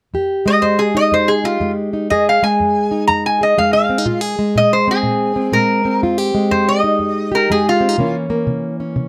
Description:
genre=acoustic country blues, solo or duo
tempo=122 BPM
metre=4/4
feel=swing 64% on 8ths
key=F minor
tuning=A4 = 439 Hz
part: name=fingerpicked plugged-in old ladder-braced acoustic guitar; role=accompaniment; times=0.1-9.1 s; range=F2 to Ab4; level=-19 LUFS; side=equal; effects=none
part: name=lap resonator guitar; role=melody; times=0.5-8.1 s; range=F4 to Bb5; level=-17 LUFS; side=equal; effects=none
room=little or no reverb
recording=close, detailed microphones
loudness=-16 LUFS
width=mono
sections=0.1-9.1 A section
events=none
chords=0.1 Fm9; 4.0 Bbsus2; 6.0 Fm9; 8.0 C7b9

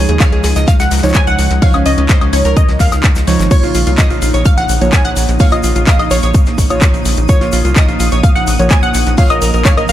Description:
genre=progressive house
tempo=127 BPM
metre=4/4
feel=straight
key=Bb minor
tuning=A4 = 440 Hz
part: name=wide unison pluck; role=melody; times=0.0-9.9 s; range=Db5 to Ab5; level=-19 LUFS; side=equal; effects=dub echo
part: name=airy breathy pad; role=sustained chords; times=0.0-9.9 s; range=Db3 to Eb4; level=-21 LUFS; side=right 2 dB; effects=chorus, sidechain pumping
part: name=glassy wavetable pluck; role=arpeggios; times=0.0-9.9 s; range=Db4 to F5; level=-21 LUFS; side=left 1 dB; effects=chorus, sidechain pumping, dub echo
part: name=deep mellow chord stab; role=stabs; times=0.0-9.9 s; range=F3 to Db5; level=-20 LUFS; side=right 2 dB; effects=chorus, sidechain pumping, dub echo
part: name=tight sequencer bass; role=bass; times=0.0-9.9 s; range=Ab1 to Eb2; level=-15 LUFS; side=equal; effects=sidechain pumping
part: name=house drum kit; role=drums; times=0.1-9.9 s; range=crash cymbal, handclaps, hi-hat, woodblock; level=-19 LUFS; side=left 2 dB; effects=overdrive
part: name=damped 70s drum kit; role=drums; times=0.2-9.9 s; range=hi-hat, shaker, snare drum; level=-28 LUFS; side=left 3 dB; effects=high-pass filter on hats, high-pass filter on snare, high-pass filter on perc, high-pass filter on room
part: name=electronic kick drum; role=drums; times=0.2-9.7 s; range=none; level=-11 LUFS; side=equal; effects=overdrive
part: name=egg shaker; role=percussion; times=3.5-9.9 s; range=none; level=-29 LUFS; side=right 4 dB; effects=none
part: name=twinkling granular texture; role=texture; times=3.9-9.9 s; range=Eb6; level=-28 LUFS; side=left 2 dB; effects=built-in reverb, sidechain pumping
room=small room ambience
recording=dark, warm production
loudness=-9 LUFS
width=side -12 dB against mid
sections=0.0-9.9 A section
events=none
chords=0.0 Dbadd9; 3.5 Bbm

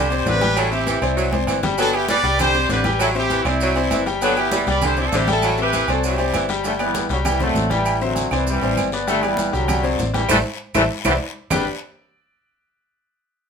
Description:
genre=latin, salsa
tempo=197 BPM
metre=4/4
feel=straight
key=G major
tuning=A4 = 439 Hz
part: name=brilliant horn section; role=melody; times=0.0-6.5 s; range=C4 to D5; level=-21 LUFS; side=right 1 dB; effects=none
part: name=clear saxophone section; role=second line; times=0.0-6.5 s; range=D3 to G3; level=-25 LUFS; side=right 1 dB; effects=none
part: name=bright concert grand piano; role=accompaniment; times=0.0-11.7 s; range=G3 to G5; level=-22 LUFS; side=left 4 dB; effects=none
part: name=vintage muted fingered electric bass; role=bass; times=0.0-11.6 s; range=G1 to C2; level=-25 LUFS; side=right 1 dB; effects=none
part: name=agogo bells and timbales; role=percussion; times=0.1-11.6 s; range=none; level=-28 LUFS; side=right 9 dB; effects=none
part: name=congas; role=percussion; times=0.1-11.6 s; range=none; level=-29 LUFS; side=equal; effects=none
part: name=maracas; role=percussion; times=0.1-11.6 s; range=none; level=-34 LUFS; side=right 6 dB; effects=none
part: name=guiro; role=percussion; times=0.3-11.6 s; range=none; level=-34 LUFS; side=left 7 dB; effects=none
part: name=claves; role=percussion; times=0.6-11.6 s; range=none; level=-30 LUFS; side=right 8 dB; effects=none
part: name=bright trombone section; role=melody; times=6.7-11.1 s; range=C3 to A3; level=-22 LUFS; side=equal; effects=none
room=moderate studio reverb, RT60 0.5 s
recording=minimal, uncompressed stereo recording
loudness=-17 LUFS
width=side -6 dB against mid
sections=0.0-6.6 A section; 6.6-11.5 B section; 11.5-12.7 C section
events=drum fill 1.3-1.8, 10.3-11.5; band accent 10.3-11.5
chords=0.0 Csus2; 0.6 Am7; 1.2 Cadd9; 1.8 G; 2.4 Csus2; 3.0 Am7; 3.6 Cadd9; 4.2 G; 4.8 Cadd9; 5.4 Am7; 6.0 Cadd9; 6.6 G; 7.3 Cadd9; 7.9 Am7; 8.5 Cadd9; 9.1 G; 9.7 Csus2; 10.3 Am; 10.9 Cadd9; 11.5 G5

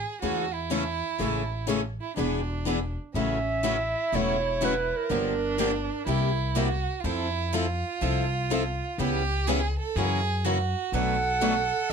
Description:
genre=acoustic string swing (jazz manouche)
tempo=123 BPM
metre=4/4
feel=swing 66% on 8ths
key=A major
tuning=A4 = 440 Hz
part: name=warm violin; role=second line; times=0.0-11.9 s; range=C#4 to A4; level=-31 LUFS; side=right 7 dB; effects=none
part: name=upright bass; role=bass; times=0.0-11.9 s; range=E1 to F#2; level=-30 LUFS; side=left 1 dB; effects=none
part: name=picked steel-string acoustic guitar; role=accompaniment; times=0.2-11.9 s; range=B2 to A4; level=-29 LUFS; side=left 7 dB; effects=none
part: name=picked steel-string acoustic guitar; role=accompaniment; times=0.2-11.9 s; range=B2 to B4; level=-33 LUFS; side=right 6 dB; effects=none
part: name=mellow clarinet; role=melody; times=3.2-5.9, 11.0-11.9 s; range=Bb4 to F#5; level=-28 LUFS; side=right 3 dB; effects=tape echo
room=light reverb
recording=close, detailed microphones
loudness=-24 LUFS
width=side -6 dB against mid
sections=0.0-3.1 A section; 3.1-11.9 B section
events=none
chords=0.0 Amaj7; 2.2 E7; 3.1 A6; 5.1 Gm7; 6.1 C7; 7.0 Fmaj7; 9.0 C#m7b5; 10.0 F#7; 10.9 Bm7

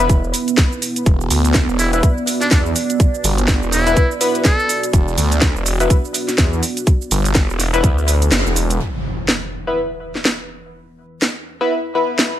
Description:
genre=bass house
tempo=124 BPM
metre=4/4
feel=swing 59% on 16ths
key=unclear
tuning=A4 = 439 Hz
part: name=dark analog pad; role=sustained chords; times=0.0-12.4 s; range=E3 to D5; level=-24 LUFS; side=right 3 dB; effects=chorus, phaser, sidechain pumping
part: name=band-passed chord stab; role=stabs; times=0.0-12.2 s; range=B3 to B4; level=-21 LUFS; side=left 2 dB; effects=chorus, phaser, sidechain pumping, dub echo
part: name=phased detuned saw bass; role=bass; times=0.0-8.8 s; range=E1 to E2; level=-18 LUFS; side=equal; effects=phaser, sidechain pumping
part: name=garage drum kit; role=drums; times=0.0-12.3 s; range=hi-hat, shaker, snare drum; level=-19 LUFS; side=right 1 dB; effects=none
part: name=electronic kick drum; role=drums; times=0.1-8.0 s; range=none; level=-14 LUFS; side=equal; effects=none
part: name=trumpet with metal mute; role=melody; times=1.8-4.8 s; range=D4 to A4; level=-22 LUFS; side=equal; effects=dub echo
part: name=impact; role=sound effects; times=8.8-10.7 s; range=none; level=-28 LUFS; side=equal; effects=none
room=little or no reverb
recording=lossy compression artefacts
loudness=-14 LUFS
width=side -12 dB against mid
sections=0.0-8.8 A section; 8.8-12.4 B section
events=kick drops out 8.3-8.8; band accent 8.3; impact 8.8-10.7; filter sweep on analog synth pad 8.8-12.4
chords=0.0 E5

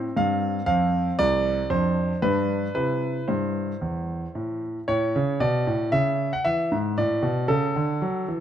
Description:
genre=classical-period piano sonatina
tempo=115 BPM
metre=4/4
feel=straight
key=C major, A major from 4.9 s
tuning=A4 = 445 Hz
part: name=clear concert grand piano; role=solo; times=0.0-8.4 s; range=C2 to F#5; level=-22 LUFS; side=equal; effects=none
room=moderate recital hall reverb, RT60 1.7 s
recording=close, detailed microphones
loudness=-22 LUFS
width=side -10 dB against mid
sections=0.0-4.9 A section; 4.9-8.4 B section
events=none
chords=0.0 F5; 1.7 Dm/F; 2.2 G; 2.8 C; 4.9 A; 7.0 D/A

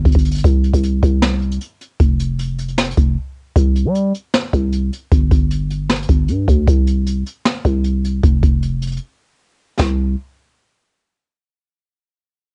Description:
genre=hip hop, trap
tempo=154 BPM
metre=4/4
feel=half-time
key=unclear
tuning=A4 = 441 Hz
part: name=growling 808-style bass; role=bass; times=0.0-10.2 s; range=F1 to G3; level=-19 LUFS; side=equal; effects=none
part: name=jazz brush drum kit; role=drums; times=0.1-9.9 s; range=crash cymbal, hi-hat, kick drum, snare drum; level=-18 LUFS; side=equal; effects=cassette tape
room=little or no reverb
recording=home recording on cassette, nothing above 10.7 kHz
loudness=-17 LUFS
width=mono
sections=0.0-3.6 A section; 3.6-9.8 B section; 9.8-11.4 C section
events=break 3.2-3.6, 9.0-9.8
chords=none

